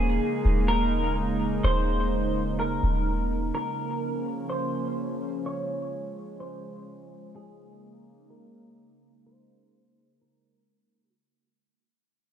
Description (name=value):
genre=hip hop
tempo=126 BPM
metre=4/4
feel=half-time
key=unclear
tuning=A4 = 439 Hz
part: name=clean electric guitar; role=melody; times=0.0-11.1 s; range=Ab4 to Db5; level=-32 LUFS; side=equal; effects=analog chorus, low-pass filter, tape echo
part: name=warbly tape-like pad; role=sustained chords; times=0.0-11.1 s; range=Db3 to Eb4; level=-30 LUFS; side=right 2 dB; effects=chorus, built-in reverb, low-pass filter
part: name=soft 808-style bass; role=bass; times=0.0-3.5 s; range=Eb1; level=-26 LUFS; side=equal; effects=none
room=light reverb, digital ambience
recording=none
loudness=-25 LUFS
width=side -9 dB against mid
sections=0.0-11.2 A section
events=fade-out 0.0-11.2; filter sweep 0.0-11.2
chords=0.0 Eb7sus4; 3.5 Bbmadd9; 7.4 Eb7sus4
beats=0.21 0.69 1.17 | 1.64 2.12 2.60 3.07 | 3.55 4.02 4.50 4.98 | 5.45 5.93 6.41 6.88 | 7.36 7.83 8.31 8.79 | 9.26 9.74 10.21 10.69